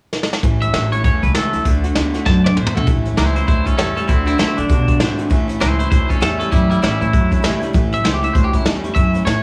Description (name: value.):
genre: rockabilly.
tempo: 197 BPM.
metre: 4/4.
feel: swing 60% on 8ths.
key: A mixolydian.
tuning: A4 = 438 Hz.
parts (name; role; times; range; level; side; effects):
vintage brush drum kit; drums; 0.1-9.3 s; hi-hat, kick drum, snare drum, toms; -20 LUFS; equal; none.
picked steel-string acoustic guitar; accompaniment; 0.4-9.4 s; A2 to F#4; -26 LUFS; equal; none.
electric guitar through a small old amp; riff; 0.4-9.4 s; A2 to C4; -27 LUFS; equal; none.
upright bass; bass; 0.4-9.4 s; G#1 to D3; -22 LUFS; equal; none.
twangy electric guitar; melody; 0.6-9.4 s; G3 to A5; -24 LUFS; equal; tape echo.
room: light reverb, small room ambience.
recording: none.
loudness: -16 LUFS.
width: mono.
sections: 0.4-2.9 A section; 2.9-9.4 B section.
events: drum fill 0.1-0.4, 2.3-2.9.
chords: 0.4 A; 1.7 D; 2.9 A; 4.1 D; 5.3 A.